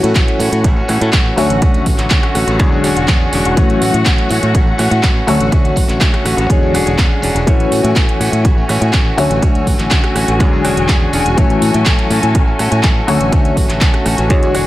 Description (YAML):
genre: filtered disco house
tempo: 123 BPM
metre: 4/4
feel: straight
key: A major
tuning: A4 = 440 Hz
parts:
  - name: warm baby grand piano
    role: accompaniment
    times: 0.0-14.7 s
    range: D3 to C#5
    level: -18 LUFS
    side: left 2 dB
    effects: phaser, sidechain pumping, low-pass filter
  - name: muted studio string section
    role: sustained chords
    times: 0.0-14.7 s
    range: F#4 to G#5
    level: -22 LUFS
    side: left 3 dB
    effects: sidechain pumping, low-pass filter
  - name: direct-recorded clean electric guitar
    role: riff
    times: 0.0-14.7 s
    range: E3 to C#5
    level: -20 LUFS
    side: right 2 dB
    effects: vintage 12-bit sampler grit, sidechain pumping, low-pass filter
  - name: modern bright fingered electric bass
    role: bass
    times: 0.0-14.6 s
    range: E1 to A2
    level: -18 LUFS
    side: equal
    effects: sidechain pumping, low-pass filter
  - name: house drum kit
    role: drums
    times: 0.0-14.6 s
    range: handclaps, hi-hat, rim click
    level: -20 LUFS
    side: right 1 dB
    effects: sidechain pumping on hats, studio reverb, sidechain pumping on cymbals
  - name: tambourine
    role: percussion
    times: 0.0-14.6 s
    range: none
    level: -34 LUFS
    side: equal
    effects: sidechain pumping on perc, low-pass filter on perc
  - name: electronic kick drum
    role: drums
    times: 0.2-14.4 s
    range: none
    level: -13 LUFS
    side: equal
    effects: studio reverb
  - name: swell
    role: sound effects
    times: 14.7 s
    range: none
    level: barely audible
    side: none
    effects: none
room: light reverb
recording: none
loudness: -11 LUFS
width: side -15 dB against mid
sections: 0.0-14.7 A section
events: none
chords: 0.0 A6; 1.4 Dmaj7; 2.6 E13; 3.6 A6; 5.3 Dmaj7; 6.5 E13; 7.5 A6; 9.2 Dmaj7; 10.4 E13; 11.4 A6; 13.1 Dmaj7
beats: 0.16 0.64 1.13 | 1.62 2.11 2.60 3.08 | 3.57 4.06 4.55 5.03 | 5.52 6.01 6.50 6.99 | 7.47 7.96 8.45 8.94 | 9.43 9.91 10.40 10.89 | 11.38 11.86 12.35 12.84 | 13.33 13.81 14.30